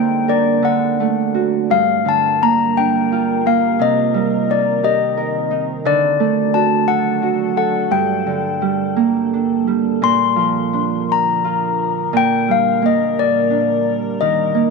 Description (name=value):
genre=children's music, lullaby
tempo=58 BPM (dotted quarters)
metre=6/8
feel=rubato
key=G minor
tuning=A4 = 439 Hz
part: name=handbells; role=melody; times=0.0-14.7 s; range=D5 to C6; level=-17 LUFS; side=left 12 dB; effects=tape echo
part: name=Celtic harp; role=accompaniment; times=0.0-14.7 s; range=G2 to Bb4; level=-18 LUFS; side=right 10 dB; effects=none
part: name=evolving wavetable pad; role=sustained chords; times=0.0-14.7 s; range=Bb2 to Bb4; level=-26 LUFS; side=left 1 dB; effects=chorus, built-in reverb
room=moderate echo chamber reverb, RT60 1.6 s, small room ambience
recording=1960s-style stereo with parts hard left and right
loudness=-14 LUFS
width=side -3 dB against mid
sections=0.0-10.0 A section; 10.0-14.7 B section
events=none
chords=0.0 Gm/D; 0.6 D; 1.7 Gm7; 3.8 Cm7; 5.8 D; 7.9 Gmadd9; 10.0 Bb; 12.1 Gm/Bb; 14.2 Eb